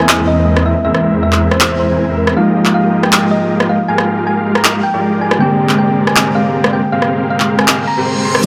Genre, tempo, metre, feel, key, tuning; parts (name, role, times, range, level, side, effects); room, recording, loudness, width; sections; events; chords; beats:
future bass; 158 BPM; 4/4; half-time; A4 = 441 Hz
thumb-piano-like synth pluck; melody; 0.0-8.5 s; Bb4 to C6; -21 LUFS; equal; chorus, tape echo
tine electric piano; accompaniment; 0.0-8.5 s; E2 to G4; -20 LUFS; equal; vintage 12-bit sampler grit
dense compressed supersaw; riff; 0.0-8.5 s; E2 to G#5; -17 LUFS; equal; low-pass filter
pop drum kit; drums; 0.0-8.5 s; finger snaps, handclaps, hi-hat, rim click, snare drum; -16 LUFS; equal; overdrive
reverse cymbal; sound effects; 7.8-8.4 s; -23 LUFS; equal
light reverb, digital ambience; -13 LUFS; mono
0.0-8.4 A section
reverse cymbal 7.8-8.4
0.0 C7alt/E; 2.4 Fm11; 5.4 Bb13
0.09 0.47 | 0.85 1.23 1.61 1.99 | 2.37 2.75 3.13 3.50 | 3.88 4.26 4.64 5.02 | 5.40 5.78 6.16 6.54 | 6.92 7.30 7.68 8.06 | 8.44